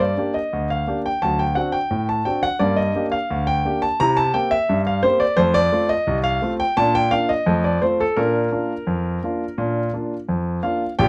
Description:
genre	ragtime piano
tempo	86 BPM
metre	2/4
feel	straight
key	Bb major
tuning	A4 = 438 Hz
part	clear grand piano	solo	0.0-11.1 s	Bb1 to Bb5	-20 LUFS	equal	none
room	light reverb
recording	close, detailed microphones, faint mains hum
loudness	-21 LUFS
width	mono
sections	0.0-11.0 A section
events	none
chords	0.0 Gm; 1.2 D7; 2.6 Gm; 4.0 C7; 5.4 F; 6.8 Bb; 7.5 F; 8.2 Bb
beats	0.52 | 1.22 1.91 | 2.61 3.31 | 4.00 4.69 | 5.39 6.08 | 6.77 7.47 | 8.17 8.88 | 9.58 10.29 | 10.99

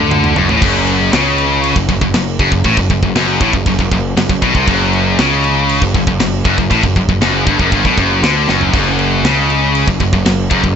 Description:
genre	heavy metal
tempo	118 BPM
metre	4/4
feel	straight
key	F# phrygian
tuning	A4 = 440 Hz
part	scooped high-gain guitar	riff	0.0-10.8 s	F#2 to D3	-13 LUFS	left 1 dB	distortion
part	fuzz picked electric bass	bass	0.0-10.8 s	F#1 to D2	-17 LUFS	equal	overdrive
part	tight metal drum kit	drums	0.1-10.8 s	crash cymbal, kick drum, snare drum, splash cymbal, toms	-17 LUFS	right 1 dB	none
room	small room ambience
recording	nothing above 7.9 kHz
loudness	-11 LUFS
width	side -8 dB against mid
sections	0.6-10.8 A section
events	drum fill 0.0-0.6, 8.5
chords	0.0 F#m; 0.6 F#5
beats	0.11 | 0.62 1.12 1.63 2.14 | 2.65 3.15 3.66 4.17 | 4.68 5.18 5.69 6.20 | 6.71 7.21 7.72 8.23 | 8.74 9.24 9.75 10.26

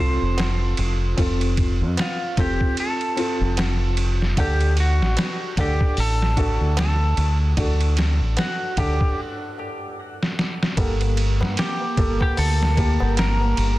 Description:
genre	trip hop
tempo	75 BPM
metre	4/4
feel	swing 59% on 16ths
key	G minor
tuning	A4 = 443 Hz
part	clean lap steel guitar	melody	0.0-13.8 s	F4 to C5	-28 LUFS	equal	tape echo
part	felt-muted upright piano	accompaniment	0.0-13.8 s	Bb3 to F#5	-28 LUFS	equal	tremolo, tape echo
part	deep dub fingered electric bass	bass	0.0-13.8 s	F1 to G2	-20 LUFS	equal	none
part	trip hop sampler-style drum kit	drums	0.4-13.8 s	hi-hat, kick drum, ride cymbal, snare drum	-24 LUFS	equal	none
part	tabla	percussion	0.4-13.5 s	none	-36 LUFS	left 1 dB	none
part	dark studio string section	sustained chords	10.8-13.8 s	Bb3	-32 LUFS	right 2 dB	stereo widening
room	studio ambience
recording	dense, heavily limited modern master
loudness	-19 LUFS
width	side -17 dB against mid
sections	0.0-10.8 A section; 10.8-13.8 B section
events	break 9.2-10.8; drum fill 10.2-10.8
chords	0.0 F; 4.4 D; 10.8 Gmadd9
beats	0.37 | 1.17 1.97 2.77 3.57 | 4.37 5.17 5.97 6.77 | 7.57 8.37 9.17 9.97 | 10.77 11.57 12.37 13.17

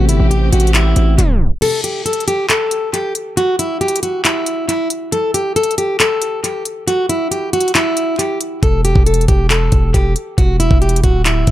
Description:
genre	hip hop, trap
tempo	137 BPM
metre	4/4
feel	half-time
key	unclear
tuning	A4 = 440 Hz
part	fingerpicked plugged-in steel-string acoustic guitar	melody	0.0-11.5 s	E4 to A4	-17 LUFS	equal	analog delay
part	felt-muted upright piano	accompaniment	0.0-1.6 s	C3 to G4	-23 LUFS	left 3 dB	analog delay
part	warm symphonic string section	sustained chords	0.0-1.6 s	A3 to G4	-27 LUFS	left 1 dB	none
part	distorted 808-style bass	bass	0.0-1.6, 8.6-11.5 s	D1 to A1	-14 LUFS	equal	distortion
part	trap drum kit	drums	0.1-11.5 s	crash cymbal, handclaps, hi-hat, kick drum	-16 LUFS	equal	none
room	light reverb, small room ambience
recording	echo-heavy mix, tape stop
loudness	-13 LUFS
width	side -14 dB against mid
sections	0.0-1.6 A section; 1.6-11.5 B section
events	tape stop 1.2-1.6; break 1.6-8.6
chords	0.0 Am7; 1.6 N.C.; 8.6 Dsus2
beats	0.31 0.74 1.18 | 1.62 2.06 2.50 2.93 | 3.37 3.81 4.25 4.69 | 5.12 5.56 6.00 6.44 | 6.88 7.31 7.75 8.19 | 8.63 9.06 9.50 9.94 | 10.38 10.82 11.26

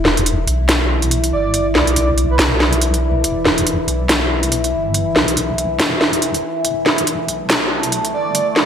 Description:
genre	deep dubstep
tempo	141 BPM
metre	4/4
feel	swing 58% on 16ths, half-time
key	E minor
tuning	A4 = 440 Hz
part	overtone-sweeping drone	sustained chords	0.0-8.7 s	E3 to E4	-21 LUFS	left 1 dB	chorus, built-in reverb
part	deep soft wobble bass	bass	0.0-8.7 s	E1 to B1	-20 LUFS	equal	chorus
part	garage drum kit	drums	0.1-8.7 s	hi-hat, snare drum	-16 LUFS	equal	none
part	breathy flute-like synth lead	melody	1.3-2.6, 8.1-8.5 s	B4 to D5	-23 LUFS	right 3 dB	tremolo, analog chorus, vintage 12-bit sampler grit, dub echo
room	moderate lush hall reverb, RT60 2.2 s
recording	high-pass filter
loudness	-14 LUFS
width	side -8 dB against mid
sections	0.0-8.7 A section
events	build-up 0.0-8.7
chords	0.0 Em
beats	0.26 0.69 1.11 | 1.54 1.97 2.39 2.82 | 3.24 3.67 4.09 4.52 | 4.94 5.37 5.79 6.22 | 6.65 7.07 7.50 7.92 | 8.35

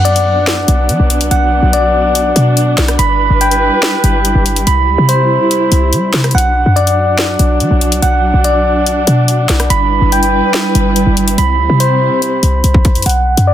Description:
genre	hip hop, drill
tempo	143 BPM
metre	4/4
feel	half-time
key	B phrygian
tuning	A4 = 440 Hz
part	dark studio string section	sustained chords	0.0-13.0 s	C3 to B4	-18 LUFS	right 2 dB	none
part	soft electric-piano-like synth keys	arpeggios	0.0-13.5 s	C5 to B5	-14 LUFS	equal	chorus, low-pass filter, ping-pong delay
part	short 808-style bass	bass	0.0-13.5 s	G1 to G3	-13 LUFS	equal	none
part	drill drum kit	drums	0.1-13.5 s	hi-hat, kick drum, rim click, snare drum	-15 LUFS	left 1 dB	none
room	little or no reverb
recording	dense, heavily limited modern master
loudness	-9 LUFS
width	side -11 dB against mid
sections	0.0-13.1 A section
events	drum fill 12.6-13.1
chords	0.0 Bm; 3.0 G6; 4.7 Cmaj7; 6.3 Bm; 9.7 G6; 11.4 Cmaj7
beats	0.05 0.47 0.89 | 1.31 1.73 2.15 2.57 | 2.99 3.41 3.83 4.25 | 4.67 5.09 5.51 5.93 | 6.35 6.77 7.18 7.61 | 8.02 8.44 8.86 9.28 | 9.70 10.12 10.54 10.96 | 11.38 11.80 12.22 12.64 | 13.06 13.48

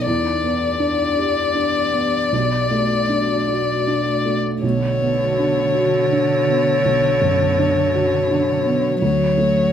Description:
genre	neoclassical piano and strings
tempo	76-84 BPM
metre	3/4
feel	rubato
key	B minor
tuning	A4 = 440 Hz
part	rich violin	melody	0.0-9.7 s	C#5 to D5	-19 LUFS	left 4 dB	none
part	felt-muted upright piano	accompaniment	0.0-9.7 s	B1 to A4	-21 LUFS	right 2 dB	none
part	glassy FM pad	sustained chords	0.0-9.7 s	A3 to G4	-29 LUFS	left 3 dB	ensemble chorus, built-in reverb
part	rich cello	second line	4.6-9.7 s	D3 to F#3	-24 LUFS	right 6 dB	none
room	light reverb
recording	band playing live in one room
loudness	-16 LUFS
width	side -9 dB against mid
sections	0.0-4.6 A section; 4.6-9.7 A section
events	none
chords	0.1 Em7; 2.3 Bm7; 4.6 Bmadd9; 9.0 Dmaj7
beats	| 0.07 0.80 1.55 | 2.32 3.10 3.88 | 4.63 5.37 6.11 | 6.85 7.58 8.30 | 9.02

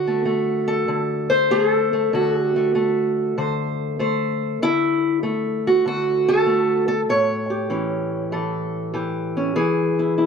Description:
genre	acoustic country blues, solo or duo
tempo	97 BPM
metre	4/4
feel	swing 67% on 8ths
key	unclear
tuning	A4 = 440 Hz
part	fingerpicked steel-string acoustic guitar	solo	0.0-10.3 s	A2 to C#5	-18 LUFS	equal	none
room	moderate studio ambience, RT60 0.5 s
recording	none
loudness	-19 LUFS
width	side -6 dB against mid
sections	0.0-10.3 A section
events	none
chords	0.0 D7; 7.1 A7; 9.6 E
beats	0.27 0.89 1.51 | 2.13 2.75 3.37 3.99 | 4.61 5.23 5.84 6.46 | 7.08 7.70 8.32 8.94 | 9.55 10.17

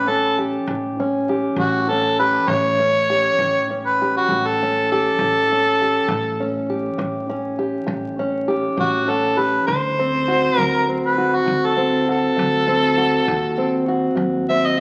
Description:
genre	blues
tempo	67 BPM (dotted quarters)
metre	12/8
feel	straight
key	A mixolydian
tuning	A4 = 439 Hz
part	clear harmonica	melody	0.0-14.8 s	F#4 to E5	-20 LUFS	equal	none
part	fingerpicked steel-string acoustic guitar	accompaniment	0.0-14.8 s	A2 to G4	-24 LUFS	equal	none
part	upright bass	bass	0.0-14.8 s	A1 to D#2	-32 LUFS	equal	none
room	wet large studio reverb, RT60 1.4 s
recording	very old 78 rpm record, vinyl crackle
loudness	-19 LUFS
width	mono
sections	0.0-14.8 A section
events	harmonica solo 0.0-14.8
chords	0.0 A7; 9.7 D7; 13.3 D#dim7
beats	0.68 1.58 | 2.48 3.38 4.29 5.19 | 6.09 6.99 7.89 8.79 | 9.69 10.59 11.48 12.38 | 13.28 14.18

